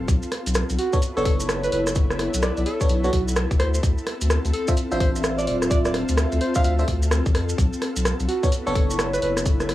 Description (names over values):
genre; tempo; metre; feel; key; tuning
UK garage, two-step garage; 128 BPM; 4/4; swing 63% on 16ths; B minor; A4 = 440 Hz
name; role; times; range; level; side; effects
saturated sub bass; bass; 0.0-9.7 s; D1 to F2; -24 LUFS; equal; none
ethereal airy pad; texture; 0.0-9.7 s; B3 to A4; -30 LUFS; left 2 dB; ensemble chorus, built-in reverb, sidechain pumping, cassette tape
electronic kick drum; drums; 0.1-9.6 s; none; -21 LUFS; equal; none
punchy analog drum machine; drums; 0.1-9.7 s; hi-hat, rim click; -27 LUFS; equal; none
maracas; percussion; 0.1-9.7 s; none; -34 LUFS; right 2 dB; none
mellow alto saxophone; melody; 0.8-9.3 s; F#4 to F5; -28 LUFS; right 2 dB; cassette tape, analog delay
FM electric piano; stabs; 0.9-9.7 s; B3 to E5; -26 LUFS; equal; chorus, cassette tape, analog delay
room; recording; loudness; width
light reverb; home recording on cassette; -20 LUFS; side -14 dB against mid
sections
0.0-9.7 A section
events
none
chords
0.1 Bm9; 3.6 Dm9; 7.6 Bm9